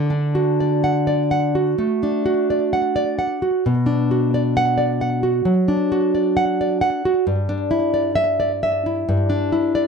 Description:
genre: romantic piece for solo classical guitar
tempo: 66 BPM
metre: 4/4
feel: rubato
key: D major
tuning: A4 = 440 Hz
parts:
  - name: nylon-string guitar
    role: solo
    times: 0.0-9.9 s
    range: G2 to F#5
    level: -17 LUFS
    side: equal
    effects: slapback echo
room: light reverb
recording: dry, close 1970s-style studio recording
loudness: -17 LUFS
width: side -5 dB against mid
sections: 0.0-9.9 A section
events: none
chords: 0.0 D; 3.6 Bm; 7.2 Em7/G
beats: 0.85 1.79 2.71 | 3.63 4.54 5.44 6.34 | 7.23 8.13 9.05

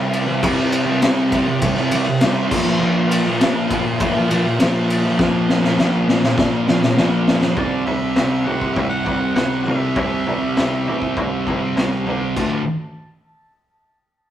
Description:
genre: garage rock duo or trio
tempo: 101 BPM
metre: 4/4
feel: straight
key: unclear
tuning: A4 = 440 Hz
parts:
  - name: thick fuzz guitar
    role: riff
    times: 0.0-12.6 s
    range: D2 to C4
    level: -18 LUFS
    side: equal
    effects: distortion
  - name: raw garage drum kit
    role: drums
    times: 0.1-12.5 s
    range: crash cymbal, kick drum, ride cymbal, snare drum, toms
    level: -20 LUFS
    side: left 1 dB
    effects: none
  - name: warm harmonica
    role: melody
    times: 7.6-12.6 s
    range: D5 to A5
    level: -28 LUFS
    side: equal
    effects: overdrive, tape echo
room: moderate stone room reverb, RT60 1.0 s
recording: rough rehearsal-room recording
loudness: -16 LUFS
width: side -11 dB against mid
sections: 0.0-7.6 A section; 7.6-12.4 B section; 12.4-14.3 C section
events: drum fill 5.2-7.6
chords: 0.0 C5; 2.5 Bb5; 7.6 C; 12.4 D5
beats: | 0.43 1.02 1.62 2.21 | 2.81 3.40 4.00 4.59 | 5.18 5.78 6.37 6.97 | 7.56 8.16 8.76 9.36 | 9.96 10.55 11.15 11.75 | 12.35

